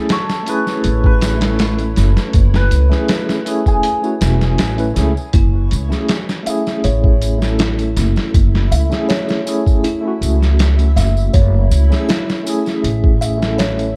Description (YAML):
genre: trip hop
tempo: 80 BPM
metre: 4/4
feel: straight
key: F# minor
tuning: A4 = 440 Hz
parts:
  - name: cimbalom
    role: melody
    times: 0.0-6.7 s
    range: G#4 to C#5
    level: -25 LUFS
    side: equal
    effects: vintage 12-bit sampler grit, tape echo
  - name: tine electric piano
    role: accompaniment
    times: 0.0-14.0 s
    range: A3 to B4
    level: -23 LUFS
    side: equal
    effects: tremolo, low-pass filter, tape echo
  - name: backwards swelling texture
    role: texture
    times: 0.4-14.0 s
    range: E4 to E5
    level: -37 LUFS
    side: equal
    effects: none
  - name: trip hop sampler-style drum kit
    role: drums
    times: 0.1-14.0 s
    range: hi-hat, kick drum, snare drum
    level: -20 LUFS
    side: equal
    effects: none
  - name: tambourine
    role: percussion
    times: 0.1-13.9 s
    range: none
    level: -37 LUFS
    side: equal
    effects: none
  - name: upright bass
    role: bass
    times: 0.8-13.9 s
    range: E1 to C#2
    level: -17 LUFS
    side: equal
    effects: none
  - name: music box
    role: arpeggios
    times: 5.3-14.0 s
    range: E4 to E5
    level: -27 LUFS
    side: equal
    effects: tape echo
room: little or no reverb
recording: dark, warm production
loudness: -15 LUFS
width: mono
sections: 0.0-14.0 A section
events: none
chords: 0.0 F#m7